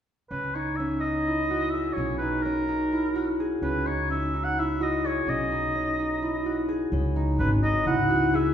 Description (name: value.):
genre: contemporary instrumental, contemporary.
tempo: 254 BPM (eighths).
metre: 7/8.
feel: straight.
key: C# dorian.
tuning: A4 = 440 Hz.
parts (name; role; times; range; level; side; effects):
clear oboe; melody; 0.3-8.5 s; A#4 to F#5; -28 LUFS; left 1 dB; none.
concert harp; arpeggios; 0.3-8.5 s; C#4 to G#4; -26 LUFS; right 1 dB; none.
upright bass; bass; 0.3-8.5 s; G#1 to C#2; -30 LUFS; equal; none.
room: wet recital hall reverb, RT60 1.7 s.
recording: heard from further back in the room.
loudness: -24 LUFS.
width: side -9 dB against mid.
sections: 0.3-6.9 A section; 6.9-8.5 B section.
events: none.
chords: 0.3 C#madd9; 2.0 Bmaj7; 3.6 C#madd9; 5.3 B; 6.9 C#madd9.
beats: | 0.31 0.55 0.79 1.02 1.26 1.49 1.73 | 1.97 2.20 2.44 2.67 2.91 3.15 3.38 | 3.62 3.86 4.09 4.33 4.57 4.80 5.04 | 5.27 5.51 5.75 5.98 6.22 6.45 6.69 | 6.92 7.16 7.39 7.63 7.87 8.10 8.34.